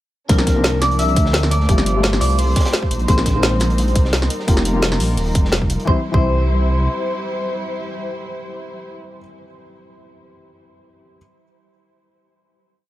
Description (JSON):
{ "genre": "liquid drum and bass", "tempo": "172 BPM", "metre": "4/4", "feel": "straight", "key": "C mixolydian", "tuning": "A4 = 436 Hz", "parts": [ { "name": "clean electric guitar", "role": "melody", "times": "0.3-9.2 s", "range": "Bb4 to E5", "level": "-24 LUFS", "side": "left 1 dB", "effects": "lush chorus, digital delay" }, { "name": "felt-muted upright piano", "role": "accompaniment", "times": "0.3-11.2 s", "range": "C3 to G4", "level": "-25 LUFS", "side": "left 2 dB", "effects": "none" }, { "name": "muted studio string section", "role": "sustained chords", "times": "0.3-8.9 s", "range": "F3 to C5", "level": "-26 LUFS", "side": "equal", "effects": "vintage 12-bit sampler grit, sidechain pumping" }, { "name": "dark detuned saw bass", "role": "bass", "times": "0.3-6.9 s", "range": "Eb1 to D2", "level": "-18 LUFS", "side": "equal", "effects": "none" }, { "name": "crunchy breakbeat drum kit", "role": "drums", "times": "0.3-5.9 s", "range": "hi-hat, snare drum", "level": "-29 LUFS", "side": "equal", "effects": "high-pass filter on hats, high-pass filter on snare, high-pass filter on room" }, { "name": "drum and bass drum kit", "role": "drums", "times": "0.3-5.8 s", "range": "hi-hat, snare drum", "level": "-20 LUFS", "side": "equal", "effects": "none" }, { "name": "electronic kick drum", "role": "drums", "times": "0.3-6.2 s", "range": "none", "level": "-17 LUFS", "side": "equal", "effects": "none" } ], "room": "small room ambience", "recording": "none", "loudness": "-15 LUFS", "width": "side -15 dB against mid", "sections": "0.3-5.9 drop; 5.9-8.7 final chord", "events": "drop 0.3-5.9", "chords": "0.3 C9sus4; 1.7 G9sus4; 2.9 Bb9sus4; 4.3 F9sus4; 5.9 C", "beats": "| 0.29 0.64 0.99 1.34 | 1.69 2.04 2.39 2.73 | 3.08 3.43 3.78 4.13 | 4.48 4.83 5.18 5.53 | 5.88 6.22 6.57 6.92 | 7.27 7.62 7.97 8.32" }